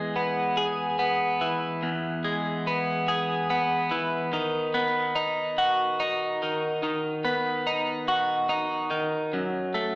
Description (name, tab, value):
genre	rock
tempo	48 BPM (dotted quarters)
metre	6/8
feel	straight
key	E major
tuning	A4 = 439 Hz
part	twelve-string electric guitar	solo	0.0-10.0 s	E2 to G#4	-24 LUFS	equal	none
room	wet recital hall reverb, RT60 1.4 s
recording	recorded in a church or concert hall, small speaker sound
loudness	-24 LUFS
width	side -24 dB against mid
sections	0.0-10.0 A section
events	none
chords	0.0 E; 4.3 B/D#; 9.3 F#m